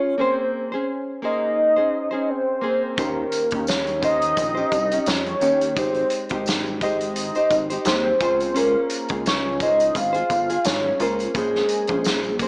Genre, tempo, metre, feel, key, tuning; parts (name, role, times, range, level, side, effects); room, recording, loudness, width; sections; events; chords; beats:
indie pop, bedroom pop; 86 BPM; 4/4; swing 55% on 16ths; Ab major; A4 = 440 Hz
warm velvety synth lead; melody; 0.0-12.4 s; Ab4 to F5; -21 LUFS; equal; tremolo, lush chorus, slapback echo
nylon-string guitar; accompaniment; 0.0-12.5 s; Eb3 to C5; -26 LUFS; equal; wide subtle chorus, vibrato effect
chorused synth bass; bass; 3.0-12.5 s; G1 to F2; -29 LUFS; equal
loose indie drum kit; drums; 3.0-12.5 s; hi-hat, kick drum, snare drum; -26 LUFS; equal
tambourine; percussion; 3.0-12.5 s; -38 LUFS; equal
light reverb, small room ambience; small speaker sound; -19 LUFS; side -38 dB against mid
0.0-12.5 A section
0.2 Bbm9; 3.0 Eb13; 5.8 Abmaj7; 8.2 Dbmaj7; 11.3 Bbm9
| 0.18 0.88 1.58 2.28 | 2.98 3.67 4.37 5.07 | 5.77 6.46 7.16 7.86 | 8.56 9.26 9.95 10.65 | 11.35 12.04